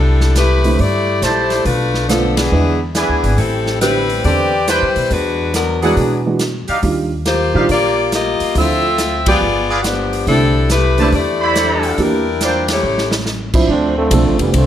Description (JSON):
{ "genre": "jazz, big band swing", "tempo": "139 BPM", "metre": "4/4", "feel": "swing 66% on 8ths", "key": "C major", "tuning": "A4 = 440 Hz", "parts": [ { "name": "clear saxophone section", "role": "melody", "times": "0.0-13.1 s", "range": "E3 to E5", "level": "-16 LUFS", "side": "left 3 dB", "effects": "none" }, { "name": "upright bass", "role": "bass", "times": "0.0-14.7 s", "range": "F1 to B2", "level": "-18 LUFS", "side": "equal", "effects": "none" }, { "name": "swinging big-band drum kit", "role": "drums", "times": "0.2-14.7 s", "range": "crash cymbal, hi-hat, kick drum, ride cymbal, snare drum", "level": "-22 LUFS", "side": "right 1 dB", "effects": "none" }, { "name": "warm upright piano", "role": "accompaniment", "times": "0.6-14.7 s", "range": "D3 to A4", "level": "-19 LUFS", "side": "right 4 dB", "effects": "none" }, { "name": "clear trumpet section", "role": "stabs", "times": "1.2-12.8 s", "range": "D4 to B5", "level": "-20 LUFS", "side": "right 2 dB", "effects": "none" }, { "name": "bright trombone section", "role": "second line", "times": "13.7-14.7 s", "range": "C3 to D4", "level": "-16 LUFS", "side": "right 2 dB", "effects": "none" } ], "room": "light reverb", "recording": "none", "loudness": "-13 LUFS", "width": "side -10 dB against mid", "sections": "0.0-13.7 A section", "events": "band accent 2.3, 9.2, 12.6; drum fill 12.8-13.3", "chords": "0.0 C69; 1.7 Bm7b5; 2.5 E7; 3.4 Am11; 5.1 E9; 6.8 Ebmaj9; 8.6 Dm9; 9.4 G7b9; 10.3 C69; 12.0 Em7b5; 12.8 A5; 13.7 Dm7" }